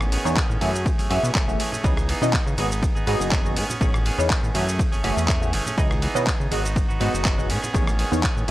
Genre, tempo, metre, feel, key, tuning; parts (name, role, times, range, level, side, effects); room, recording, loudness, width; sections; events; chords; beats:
filtered disco house; 122 BPM; 4/4; straight; A4 = 439 Hz
direct-recorded clean electric guitar; riff; 0.0-8.5 s; D#3 to G#4; -29 LUFS; right 2 dB; sidechain pumping
fat analog bass; bass; 0.0-8.5 s; F#1 to C#3; -26 LUFS; equal; sidechain pumping
dusty soul sampler-style drum kit; drums; 0.0-8.5 s; cabasa, handclaps, hi-hat, ride cymbal, rim click; -28 LUFS; equal; studio reverb, sidechain pumping on perc, sidechain pumping on hats, sidechain pumping on cymbals
congas and tube shaker; percussion; 0.0-8.5 s; -36 LUFS; right 2 dB
funky polysynth comp; accompaniment; 0.2-8.5 s; A3 to E5; -26 LUFS; equal; chorus, phaser, sidechain pumping
electronic kick drum; drums; 0.4-8.3 s; -23 LUFS; equal; overdrive, studio reverb
little or no reverb; dry, gritty hardware recording; -20 LUFS; side -16 dB against mid
0.0-8.5 A section
0.0 Amaj9#11; 0.6 F#m9; 1.8 C#m9; 2.6 G#m7; 3.6 Amaj9#11; 4.5 F#m9; 5.8 C#m9; 6.5 G#m7; 7.5 Amaj9#11
0.37 0.86 1.35 | 1.84 2.33 2.83 3.32 | 3.81 4.30 4.79 5.29 | 5.78 6.27 6.76 7.25 | 7.74 8.24